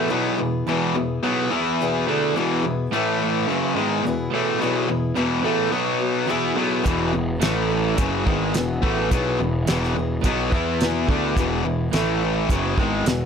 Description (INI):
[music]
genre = classic rock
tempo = 107 BPM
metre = 4/4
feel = straight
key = E major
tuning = A4 = 440 Hz
[part]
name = picked acoustic archtop guitar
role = accompaniment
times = 0.0-13.3 s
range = E2 to A4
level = -28 LUFS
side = left 3 dB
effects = none
[part]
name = crunchy overdriven guitar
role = riff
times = 0.0-13.3 s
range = E2 to E4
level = -25 LUFS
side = right 11 dB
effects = none
[part]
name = distorted electric guitar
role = riff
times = 0.0-13.3 s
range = E2 to E4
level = -24 LUFS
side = left 10 dB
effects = overdrive
[part]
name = fuzz picked electric bass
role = bass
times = 6.9-13.3 s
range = E1 to E2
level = -26 LUFS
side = equal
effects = overdrive
[part]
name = damped 70s drum kit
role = drums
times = 6.9-13.2 s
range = hi-hat, kick drum, snare drum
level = -23 LUFS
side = right 1 dB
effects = none
[sound]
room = light reverb, studio ambience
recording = none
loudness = -19 LUFS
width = side -7 dB against mid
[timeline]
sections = 0.0-13.3 A section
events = none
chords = 0.0 E; 2.9 A5; 3.5 E; 5.7 B5; 6.3 E; 7.4 A5; 8.0 E; 11.9 A5; 12.5 E